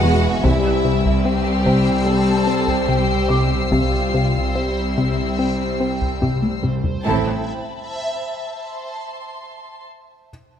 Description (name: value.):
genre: cinematic, suspense film score.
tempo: 74 BPM.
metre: 4/4.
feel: straight.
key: A minor.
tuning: A4 = 440 Hz.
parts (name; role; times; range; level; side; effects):
rich studio violin section; melody; 0.0-7.5 s; E5 to A5; -30 LUFS; left 4 dB; none.
rich studio violin section; second line; 0.0-7.5 s; E4 to A4; -28 LUFS; left 1 dB; none.
rich studio viola section; accompaniment; 0.0-7.5 s; G3 to E4; -26 LUFS; right 1 dB; none.
backwards swelling texture; sustained chords; 0.0-7.5 s; B4 to G#5; -29 LUFS; equal; built-in reverb.
mellow French horn section; sustained chords; 0.0-7.4 s; E3 to G#4; -25 LUFS; left 4 dB; none.
plucky analog bass; riff; 0.0-6.9 s; E2 to C4; -22 LUFS; left 3 dB; none.
rich studio double bass section; bass; 0.0-7.5 s; E1 to C2; -25 LUFS; right 4 dB; none.
warm studio cello section; bass; 0.0-7.5 s; C2 to A2; -26 LUFS; right 2 dB; none.
felt-muted upright piano; texture; 0.0-7.1 s; D6; -34 LUFS; left 1 dB; none.
taiko ensemble; drums; 0.4-7.2 s; none; -25 LUFS; equal; none.
rich studio violin section; texture; 0.5-9.8 s; A5 to C7; -30 LUFS; left 5 dB; none.
timpani; percussion; 7.0-7.4 s; none; barely audible; none; none.
room: moderate concert hall reverb, RT60 1.9 s.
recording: close, detailed microphones.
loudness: -17 LUFS.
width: side -9 dB against mid.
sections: 0.0-7.0 A section; 7.0-10.3 B section.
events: drum fill 6.2-7.0.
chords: 0.4 C; 7.0 Am.